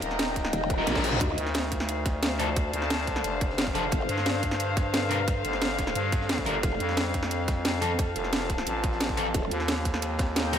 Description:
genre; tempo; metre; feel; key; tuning
dark technical drum and bass; 177 BPM; 4/4; straight; D phrygian; A4 = 440 Hz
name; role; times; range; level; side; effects
deep dark ambient pad; sustained chords; 0.0-10.6 s; G3 to F5; -34 LUFS; equal; chorus, built-in reverb, sidechain pumping
growling FM bass; bass; 0.0-10.6 s; Eb1 to G2; -31 LUFS; equal; none
crunchy breakbeat drum kit; drums; 0.0-10.6 s; ride cymbal, snare drum; -39 LUFS; equal; none
drum and bass drum kit; drums; 0.0-10.6 s; hi-hat, snare drum, toms; -30 LUFS; right 1 dB; overdrive, studio reverb
dark studio string section; texture; 0.0-10.6 s; Bb4 to A5; -33 LUFS; left 5 dB; sidechain pumping
electronic kick drum; drums; 0.4-10.3 s; none; -29 LUFS; equal; overdrive, studio reverb
growl bass; bass; 0.5-1.4, 3.9-4.1, 6.6-6.8, 9.3-9.5 s; Eb1 to D2; -29 LUFS; equal; chorus, tube saturation
reverse cymbal; sound effects; 0.7-1.2 s; none; -36 LUFS; left 7 dB; none
fuzz guitar; stabs; 0.8-10.6 s; F3 to Bb4; -34 LUFS; left 2 dB; distortion, tape echo
room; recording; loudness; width
light reverb, studio ambience; none; -25 LUFS; side -9 dB against mid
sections
0.0-10.6 A section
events
reverse cymbal 0.7-1.2; drum fill 0.9-1.2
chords
0.0 Eb; 1.2 Dm; 3.9 G5; 6.6 F; 9.3 Eb

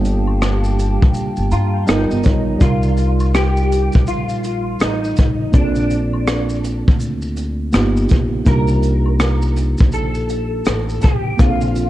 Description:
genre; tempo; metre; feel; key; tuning
lo-fi hip hop; 82 BPM; 4/4; swing 61% on 16ths; C dorian; A4 = 440 Hz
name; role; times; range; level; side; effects
electric guitar through a small old amp; melody; 0.0-11.9 s; D4 to Bb4; -23 LUFS; left 1 dB; ensemble chorus, low-pass filter
tine electric piano; accompaniment; 0.0-11.9 s; G3 to Bb5; -22 LUFS; right 2 dB; medium stereo tremolo, cassette tape, low-pass filter
warbly tape-like pad; sustained chords; 0.0-2.6 s; G4 to A#5; -29 LUFS; equal; chorus, built-in reverb, low-pass filter
upright bass; bass; 0.0-11.9 s; G1 to G2; -19 LUFS; equal; none
vintage brush drum kit; drums; 0.0-11.9 s; hi-hat, kick drum, rim click, shaker; -16 LUFS; equal; vintage 12-bit sampler grit
maracas and woodblock; percussion; 0.1-11.9 s; none; -39 LUFS; left 3 dB; none
room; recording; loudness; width
small room ambience; dark, warm production; -14 LUFS; side -15 dB against mid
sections
0.0-2.6 A section; 2.6-11.9 A section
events
tine electric piano fill 1.1-2.6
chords
0.0 Gm9; 1.9 G7alt; 2.6 Cm11; 5.5 Bbmaj7; 7.7 G7alt; 8.5 Cm11; 11.4 Bbmaj7

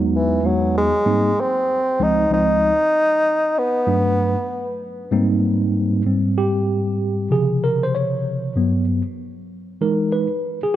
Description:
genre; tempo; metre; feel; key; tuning
hip hop; 96 BPM; 4/4; swing 63% on 16ths; Ab major; A4 = 439 Hz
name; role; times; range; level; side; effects
tine electric piano; accompaniment; 0.0-10.7 s; Db2 to Db5; -19 LUFS; equal; medium stereo tremolo
mellow bassoon; melody; 0.2-4.8 s; E3 to Eb4; -18 LUFS; equal; analog delay
room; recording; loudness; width
moderate plate reverb, RT60 2.9 s; dark, warm production; -17 LUFS; side -12 dB against mid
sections
0.0-6.1 A section; 6.1-10.8 B section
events
tine electric piano solo 6.1-10.8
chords
0.0 Emaj9; 1.1 Abmaj9; 2.3 Dbmaj9; 3.6 Gmaj9; 4.8 Abmaj9; 6.1 Abmaj7; 7.3 Dbmaj7; 8.6 Gmaj7; 9.8 Emaj7

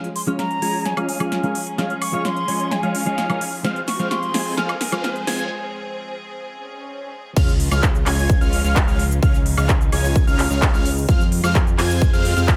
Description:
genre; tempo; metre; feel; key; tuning
EDM, festival progressive house; 129 BPM; 4/4; straight; Db major; A4 = 440 Hz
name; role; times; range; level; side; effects
clean electric guitar; accompaniment; 0.0-5.5 s; F3 to Db5; -30 LUFS; equal; sidechain pumping
clear studio string section; sustained chords; 0.0-12.6 s; C3 to Ab4; -34 LUFS; equal; sidechain pumping, low-pass filter
unison lead; arpeggios; 0.0-12.6 s; F6 to Ab6; -31 LUFS; equal; lush chorus, sidechain pumping, dub echo
supersaw chords; riff; 0.0-12.6 s; Ab3 to Ab5; -29 LUFS; equal; phaser, sidechain pumping, low-pass filter, dub echo
big-room dance drum kit; drums; 0.0-12.6 s; crash cymbal, handclaps, hi-hat, shaker, snare drum, woodblock; -28 LUFS; equal; overdrive
riser, swell and sub drop; sound effects; 0.0-9.2 s; none; -36 LUFS; equal; none
hollow concert flute; melody; 0.2-5.5 s; Ab5 to Db6; -30 LUFS; equal; dub echo
fat analog bass; bass; 7.4-12.6 s; Db2 to F2; -24 LUFS; equal; sidechain pumping
electronic kick drum; drums; 7.4-12.6 s; none; -20 LUFS; equal; overdrive
room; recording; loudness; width
light reverb; high-pass filter; -20 LUFS; mono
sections
0.0-7.4 A section; 7.4-12.6 B section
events
build-up 0.0-7.4; drum fill 0.0-5.5; filter sweep on supersaw synth 0.0-7.4; filter sweep on analog synth lead 0.0-7.4; filter sweep on string section 0.0-7.4; break 5.5-7.4; swell 6.6-7.4; drop 7.4-12.6; impact 7.4-9.2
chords
0.0 Db; 3.6 Fm; 7.4 Db; 11.1 Fm

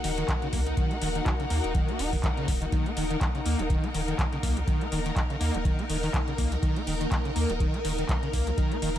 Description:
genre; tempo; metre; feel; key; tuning
acid house; 123 BPM; 4/4; swing 56% on 16ths; Eb minor; A4 = 440 Hz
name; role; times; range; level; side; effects
string machine, full ensemble; sustained chords; 0.0-9.0 s; Bb3 to Bb4; -34 LUFS; left 1 dB; phaser, ensemble chorus, sidechain pumping
overdriven acid bass; riff; 0.0-9.0 s; Db3 to Eb4; -33 LUFS; equal; distortion, tube saturation, analog chorus, cassette tape, sidechain pumping, ping-pong delay
warm sub bass; bass; 0.0-9.0 s; Eb1 to Eb2; -31 LUFS; equal; sidechain pumping
booming analog drum machine; drums; 0.0-9.0 s; handclaps, hi-hat; -36 LUFS; left 1 dB; studio reverb
dark symphonic string section; texture; 0.0-9.0 s; Eb4 to Gb5; -35 LUFS; left 2 dB; sidechain pumping
electronic kick drum; drums; 0.3-8.7 s; none; -28 LUFS; equal; studio reverb
room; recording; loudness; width
light reverb; none; -25 LUFS; side -11 dB against mid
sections
0.0-9.0 A section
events
none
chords
0.0 Ebm

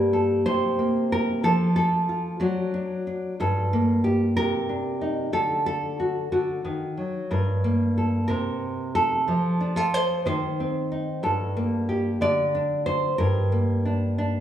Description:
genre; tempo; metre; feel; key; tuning
folk, solo fingerstyle acoustic guitar; 61 BPM (dotted quarters); 6/8; straight; G minor; A4 = 439 Hz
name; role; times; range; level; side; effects
nylon-string guitar; solo; 0.0-14.4 s; G2 to D5; -22 LUFS; equal; none
room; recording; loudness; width
wet recital hall reverb, RT60 1.7 s; recorded in a church or concert hall, small room ambience; -22 LUFS; side -10 dB against mid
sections
0.0-14.4 A section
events
none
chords
0.4 Bbsus2/C; 1.4 N.C.; 2.4 D/F#; 3.4 Gmadd9; 4.3 Cmadd9; 5.3 D; 7.3 Gm; 8.3 N.C.; 9.3 F; 10.3 Cm/Eb; 11.2 Gmadd9; 12.2 N.C.; 13.2 Gm

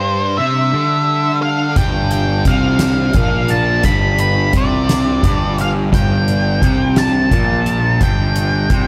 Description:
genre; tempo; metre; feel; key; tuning
psychedelic rock; 58 BPM (dotted quarters); 6/8; straight; G mixolydian; A4 = 441 Hz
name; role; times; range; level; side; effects
octave-fuzz lead guitar; melody; 0.0-8.9 s; C5 to B5; -21 LUFS; equal; distortion, analog delay
string machine, violas; sustained chords; 0.0-8.9 s; G3 to B5; -32 LUFS; equal; none
fuzz guitar; riff; 0.0-8.9 s; G2 to D3; -21 LUFS; equal; distortion, phaser
fuzz picked electric bass; bass; 1.8-8.9 s; G1 to C2; -20 LUFS; equal; overdrive
soft-mallet drum kit; drums; 1.8-8.9 s; hi-hat, kick drum, snare drum; -20 LUFS; equal; none
room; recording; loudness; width
little or no reverb; none; -15 LUFS; mono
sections
0.0-8.9 A section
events
none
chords
0.0 G

